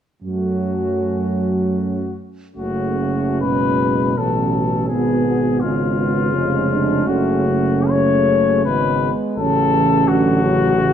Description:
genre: classical, hymn-like piece for brass band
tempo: 65-86 BPM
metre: 3/4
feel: rubato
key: F# minor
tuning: A4 = 440 Hz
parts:
  - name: mellow cornet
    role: melody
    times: 0.2-10.9 s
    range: E#4 to C#5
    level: -20 LUFS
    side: left 7 dB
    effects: none
  - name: dark French horn section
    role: second line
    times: 0.2-10.9 s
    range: B3 to D4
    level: -23 LUFS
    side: right 7 dB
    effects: none
  - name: clear trombone section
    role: accompaniment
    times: 0.2-10.9 s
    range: E3 to B3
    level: -24 LUFS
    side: left 1 dB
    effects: none
  - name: mellow trombone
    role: accompaniment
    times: 0.2-10.9 s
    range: B2 to F#3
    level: -23 LUFS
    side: right 3 dB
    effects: none
  - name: mellow tuba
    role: bass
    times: 0.2-10.9 s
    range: E#1 to F#2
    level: -22 LUFS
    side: right 1 dB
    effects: none
room: moderate recital hall reverb, RT60 1.9 s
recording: none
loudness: -16 LUFS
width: side -9 dB against mid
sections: 0.2-2.6 A section; 2.6-10.9 B section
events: none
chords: 0.2 F#m; 4.9 C#7/G#; 7.1 F#m; 9.4 F#m/A

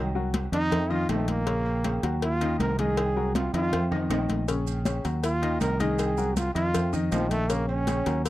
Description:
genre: latin, salsa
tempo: 159 BPM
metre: 4/4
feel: straight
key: Bb minor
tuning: A4 = 440 Hz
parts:
  - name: bright trombone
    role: melody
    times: 0.0-8.3 s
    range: F3 to Bb4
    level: -28 LUFS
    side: right 1 dB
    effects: none
  - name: warm upright piano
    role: accompaniment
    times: 0.0-8.3 s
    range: Db3 to Eb5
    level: -32 LUFS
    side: left 5 dB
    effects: none
  - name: fingered electric bass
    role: bass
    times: 0.0-8.3 s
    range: Bb1 to F2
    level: -28 LUFS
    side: right 1 dB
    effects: none
  - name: congas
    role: percussion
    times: 0.2-8.3 s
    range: none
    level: -32 LUFS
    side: left 1 dB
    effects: none
  - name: cowbell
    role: percussion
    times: 0.3-8.3 s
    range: none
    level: -34 LUFS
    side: left 5 dB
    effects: none
  - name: timbales and agogo bells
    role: percussion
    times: 0.3-8.3 s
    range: none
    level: -37 LUFS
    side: right 6 dB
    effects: none
  - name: maracas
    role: percussion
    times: 4.5-8.3 s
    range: none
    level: -44 LUFS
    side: right 20 dB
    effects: none
room: light reverb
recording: dry, close 1970s-style studio recording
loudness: -24 LUFS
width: side -15 dB against mid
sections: 0.0-8.3 A section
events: trombone solo 0.0-8.3; drum fill 3.0-4.5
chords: 0.0 Cm7b5; 0.7 F7; 1.5 Bbm; 2.2 Ebmadd9; 3.0 Cm7b5; 3.7 F7; 4.5 Bbm; 5.2 Ebmadd9; 6.0 Cm7b5; 6.7 F7; 7.5 Bbm

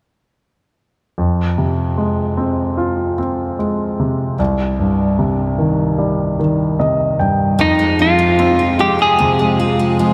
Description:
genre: pop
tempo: 75 BPM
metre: 4/4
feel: straight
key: unclear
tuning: A4 = 440 Hz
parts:
  - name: clear grand piano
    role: accompaniment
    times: 1.2-10.1 s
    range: C2 to G5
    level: -18 LUFS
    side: equal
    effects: none
  - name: clean electric guitar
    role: melody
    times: 7.6-10.1 s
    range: Eb4 to Ab4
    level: -16 LUFS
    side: equal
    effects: diffuse ambient delay
  - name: glassy FM pad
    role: sustained chords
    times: 8.6-10.1 s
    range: C3 to Ab4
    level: -23 LUFS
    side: equal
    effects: ensemble chorus, built-in reverb, phaser
  - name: picked steel-string acoustic guitar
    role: arpeggios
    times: 7.6-10.1 s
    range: F2 to F4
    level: -25 LUFS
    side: equal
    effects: analog chorus
room: wet huge ambient reverb, RT60 4.9 s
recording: dreamy mix soaked in reverb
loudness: -16 LUFS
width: mono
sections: 1.2-7.6 A section; 7.6-10.1 B section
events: grand piano fill 6.4-7.6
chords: 1.2 Fm; 4.4 Cm; 7.6 Fm

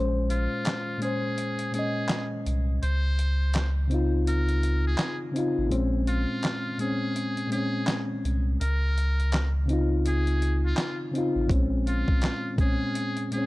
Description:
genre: lo-fi hip hop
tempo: 83 BPM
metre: 4/4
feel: swing 60% on 16ths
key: Bb minor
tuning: A4 = 440 Hz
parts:
  - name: mellow reed electric piano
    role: accompaniment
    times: 0.0-13.5 s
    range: Bb2 to Eb5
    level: -28 LUFS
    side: left 1 dB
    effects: low-pass filter
  - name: warm sub bass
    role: bass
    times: 0.0-12.0 s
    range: A1 to Db2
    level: -25 LUFS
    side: equal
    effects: none
  - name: trumpet with metal mute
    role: melody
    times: 0.3-13.5 s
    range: F4 to C5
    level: -34 LUFS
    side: equal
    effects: low-pass filter, analog delay
  - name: dusty soul sampler-style drum kit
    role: drums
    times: 0.3-13.5 s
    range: handclaps, hi-hat, kick drum, snare drum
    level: -29 LUFS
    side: equal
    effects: overdrive
room: little or no reverb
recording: dark, warm production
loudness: -24 LUFS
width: side -19 dB against mid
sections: 0.0-13.5 A section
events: break 0.0-11.5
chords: 0.0 Bbm9; 2.8 Dbmaj9; 5.7 Bbm9; 8.6 Dbmaj9; 11.5 Bbm9

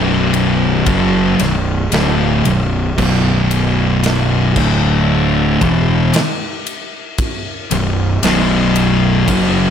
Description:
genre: stoner and doom metal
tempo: 57 BPM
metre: 4/4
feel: straight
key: B minor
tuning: A4 = 440 Hz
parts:
  - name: thick fuzz guitar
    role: riff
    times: 0.0-9.7 s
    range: B1 to F#3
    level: -15 LUFS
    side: left 5 dB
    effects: distortion
  - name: thick fuzz guitar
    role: riff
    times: 0.0-9.7 s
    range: B1 to F#3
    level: -18 LUFS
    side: right 10 dB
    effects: distortion
  - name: fuzz fingered electric bass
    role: bass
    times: 0.0-9.7 s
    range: B0 to F#1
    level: -20 LUFS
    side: equal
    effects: overdrive
  - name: big rock drum kit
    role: drums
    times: 0.3-9.5 s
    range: crash cymbal, kick drum, ride cymbal, snare drum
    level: -21 LUFS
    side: equal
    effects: none
room: light reverb, small room ambience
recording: none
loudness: -12 LUFS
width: side -8 dB against mid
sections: 0.0-9.7 A section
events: none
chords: 0.0 Bm; 4.6 D5; 5.6 B5

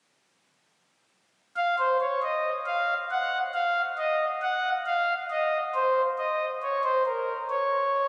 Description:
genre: classical, baroque-style 3-part fugue for pipe organ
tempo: 68 BPM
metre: 4/4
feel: straight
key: unclear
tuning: A4 = 440 Hz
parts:
  - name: pipe organ, principal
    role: solo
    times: 1.6-8.1 s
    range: Bb4 to Gb5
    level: -27 LUFS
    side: equal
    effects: none
room: wet cathedral reverb, RT60 5.3 s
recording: recorded on a phone in the room, club reverb, compression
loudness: -27 LUFS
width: mono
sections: 1.3-8.1 A section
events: none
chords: none

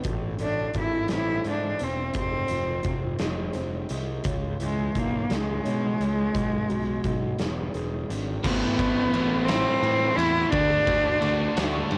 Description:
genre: quiet-loud alternative rock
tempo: 57 BPM (dotted quarters)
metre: 6/8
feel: straight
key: A harmonic minor, A dorian from 8.4 s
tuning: A4 = 443 Hz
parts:
  - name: fingerpicked acoustic archtop guitar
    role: arpeggios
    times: 0.0-8.4 s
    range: F2 to G#4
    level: -37 LUFS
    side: equal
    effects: cassette tape
  - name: fuzz picked electric bass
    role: bass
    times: 0.0-12.0 s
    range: E1 to B2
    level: -33 LUFS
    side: equal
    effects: overdrive
  - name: oversized low-tuned drum kit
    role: drums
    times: 0.0-12.0 s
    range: crash cymbal, hi-hat, kick drum, ride cymbal, snare drum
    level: -33 LUFS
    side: equal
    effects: none
  - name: rich cello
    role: melody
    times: 0.4-11.9 s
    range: G#3 to E4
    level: -28 LUFS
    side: equal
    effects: cassette tape, tape echo
  - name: crunchy overdriven guitar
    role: riff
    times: 8.4-12.0 s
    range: A2 to F#4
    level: -35 LUFS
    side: equal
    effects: cassette tape
  - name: fuzz guitar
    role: riff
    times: 8.4-12.0 s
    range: A2 to F#4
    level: -34 LUFS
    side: equal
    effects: none
  - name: sludgy distorted guitar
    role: riff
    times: 8.4-12.0 s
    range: A2 to D4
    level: -37 LUFS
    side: equal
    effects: none
room: small room reverb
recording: home recording on cassette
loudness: -26 LUFS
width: mono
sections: 0.0-8.4 A section; 8.4-12.0 B section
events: none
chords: 0.0 Am; 2.1 Fm; 4.3 C#m; 6.4 B5; 7.4 E7; 8.4 Am; 10.5 D

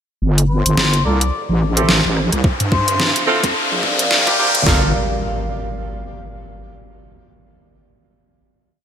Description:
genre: glitch hop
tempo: 108 BPM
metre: 4/4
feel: swing 58% on 16ths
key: G dorian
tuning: A4 = 441 Hz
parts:
  - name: dark analog pad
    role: sustained chords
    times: 0.2-4.9 s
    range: G3 to F5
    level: -27 LUFS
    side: right 1 dB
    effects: chorus, sidechain pumping
  - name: wobble bass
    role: bass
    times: 0.2-4.9 s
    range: G1 to G2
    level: -18 LUFS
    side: equal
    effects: chorus, tube saturation
  - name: riser and impact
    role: sound effects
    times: 1.4-6.9 s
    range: none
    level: -22 LUFS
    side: left 1 dB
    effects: none
  - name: pop drum kit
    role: drums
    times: 0.4-4.6 s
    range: hi-hat, rim click, snare drum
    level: -18 LUFS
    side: equal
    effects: overdrive, gated reverb
  - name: warm harmonica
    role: melody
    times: 0.5-3.3 s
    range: C5 to D5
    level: -24 LUFS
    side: left 4 dB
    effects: vintage 12-bit sampler grit, low-pass filter, ping-pong delay
  - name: warm horn section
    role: stabs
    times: 1.1-4.9 s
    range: Bb3 to A4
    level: -22 LUFS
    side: right 1 dB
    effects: sidechain pumping, low-pass filter, ping-pong delay
  - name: pop drum kit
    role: drums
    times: 2.4-4.8 s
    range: kick drum, snare drum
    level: -17 LUFS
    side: equal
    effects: overdrive, gated reverb
room: moderate lush hall reverb, RT60 2.0 s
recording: bright 1980s-style digital production, high-pass filter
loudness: -14 LUFS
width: side -8 dB against mid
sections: 0.2-4.7 build; 4.7-6.9 final chord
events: build-up 0.2-4.7; filter sweep on horn section 0.2-4.7; filter sweep on harmonica 0.2-4.7; filter sweep on analog synth pad 0.2-4.7; filter sweep 0.2-4.7; riser 1.4-4.7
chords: 0.2 Gm7; 1.3 Am7; 2.4 Dm9; 3.6 C9sus4; 4.7 Gm7

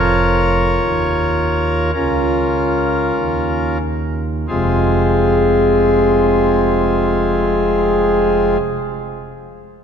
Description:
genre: classical, chorale-style piece for pipe organ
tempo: 44-58 BPM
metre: 4/4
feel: straight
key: F minor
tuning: A4 = 440 Hz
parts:
  - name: pipe organ, cornet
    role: solo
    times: 0.0-8.6 s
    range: F1 to Db5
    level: -14 LUFS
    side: equal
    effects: none
room: wet church reverb, RT60 3.1 s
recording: minimal, uncompressed stereo recording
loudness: -14 LUFS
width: side -7 dB against mid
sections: 0.0-4.5 A section; 4.5-9.8 B section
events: slowing down 0.0-4.5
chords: 0.0 Bbm/F; 4.5 Fm

